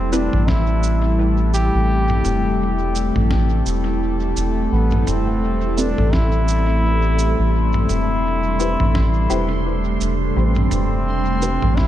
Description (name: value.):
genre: ambient dub.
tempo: 85 BPM.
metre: 4/4.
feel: swing 58% on 16ths.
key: A minor.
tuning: A4 = 439 Hz.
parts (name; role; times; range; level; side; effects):
bright trombone; melody; 0.0-11.9 s; B3 to G4; -25 LUFS; left 1 dB; dub echo.
warbly tape-like pad; sustained chords; 0.0-11.9 s; C3 to A4; -22 LUFS; equal; chorus, built-in reverb, phaser.
soft dub sub bass; bass; 0.0-11.9 s; E1 to A1; -19 LUFS; equal; none.
filtered dub chord stab; stabs; 0.1-0.3, 5.8-11.6 s; C4 to B4; -27 LUFS; left 2 dB; phaser, lush chorus, dub echo.
lo-fi sampler-style drum kit; drums; 0.1-11.9 s; cabasa, snare drum, toms; -27 LUFS; right 1 dB; dub echo.
electronic kick drum; drums; 0.5-11.9 s; none; -24 LUFS; equal; none.
bubbling stepped-filter texture; texture; 4.7-11.9 s; C6; -35 LUFS; left 3 dB; chorus, built-in reverb.
room: light reverb.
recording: none.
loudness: -16 LUFS.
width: side -12 dB against mid.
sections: 0.0-11.9 A section.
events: none.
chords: 0.0 Am7.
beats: 0.48 1.19 | 1.89 2.60 3.30 4.01 | 4.72 5.42 6.13 6.83 | 7.54 8.24 8.95 9.66 | 10.36 11.07 11.77.